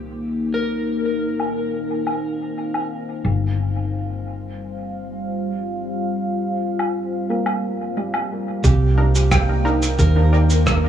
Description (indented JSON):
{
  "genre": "ambient dub",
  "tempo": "89 BPM",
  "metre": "4/4",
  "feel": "straight",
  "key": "C minor",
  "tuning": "A4 = 440 Hz",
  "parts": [
    { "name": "electric slide guitar", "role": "melody", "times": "0.0-2.9, 8.6-10.6 s", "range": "G4 to Bb4", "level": "-27 LUFS", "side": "left 3 dB", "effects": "dub echo" },
    { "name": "deep dark ambient pad", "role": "sustained chords", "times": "0.0-10.9 s", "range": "G3 to F5", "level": "-25 LUFS", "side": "left 1 dB", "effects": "chorus, built-in reverb" },
    { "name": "hollow-body short-scale fingered electric bass", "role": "bass", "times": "0.0-10.9 s", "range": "G1 to Eb2", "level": "-18 LUFS", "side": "right 1 dB", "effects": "none" },
    { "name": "electronic woodblock, shaker and rim click", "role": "drums", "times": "1.4-10.8 s", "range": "none", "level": "-26 LUFS", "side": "right 1 dB", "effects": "low-pass filter on perc, low-pass filter on snare, low-pass filter on room, dub echo" },
    { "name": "felt-muted upright piano", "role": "arpeggios", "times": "7.3-10.9 s", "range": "G3 to G5", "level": "-29 LUFS", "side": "right 2 dB", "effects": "dub echo" },
    { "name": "electronic kick drum", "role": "drums", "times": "8.6-10.8 s", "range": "none", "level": "-21 LUFS", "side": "right 1 dB", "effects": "none" },
    { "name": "filtered dub chord stab", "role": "stabs", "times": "9.0-10.5 s", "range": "D4 to Bb4", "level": "-25 LUFS", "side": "left 1 dB", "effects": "chorus, dub echo" }
  ],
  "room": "light reverb",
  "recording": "small room ambience",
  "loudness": "-18 LUFS",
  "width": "side -10 dB against mid",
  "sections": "0.0-8.6 A section; 8.6-10.9 B section",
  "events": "none",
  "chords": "0.0 Cm7; 3.2 G7sus4; 8.6 Cm9"
}